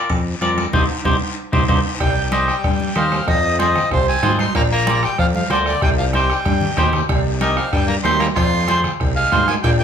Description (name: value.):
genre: latin, cumbia.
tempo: 189 BPM.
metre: 4/4.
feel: straight.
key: C minor.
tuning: A4 = 440 Hz.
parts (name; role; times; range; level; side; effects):
clean electric guitar; accompaniment; 0.0-9.5 s; Eb4 to Eb5; -21 LUFS; equal; none.
fat analog bass; bass; 0.1-9.8 s; Bb1 to Ab2; -21 LUFS; equal; none.
bombo; percussion; 0.1-9.8 s; none; -22 LUFS; left 1 dB; none.
guiro; percussion; 0.1-9.8 s; none; -32 LUFS; left 4 dB; none.
timbales and cowbell; percussion; 0.1-9.8 s; none; -27 LUFS; right 3 dB; none.
congas; percussion; 0.4-9.8 s; none; -27 LUFS; right 2 dB; none.
accordion; melody; 2.0-9.8 s; C5 to C6; -21 LUFS; right 2 dB; none.
raspy tenor saxophone; second line; 2.0-9.8 s; D3 to F4; -27 LUFS; left 3 dB; none.
room: moderate large studio reverb, RT60 0.8 s.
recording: band playing live in one room.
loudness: -15 LUFS.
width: side -8 dB against mid.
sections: 0.0-2.0 A section; 2.0-9.8 B section.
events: drum fill 0.7-2.0, 6.1-7.1; band accent 0.7-2.0.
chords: 0.0 Bb; 0.7 Cm; 3.3 Fm; 4.5 Bb; 5.8 Cm; 8.4 Fm.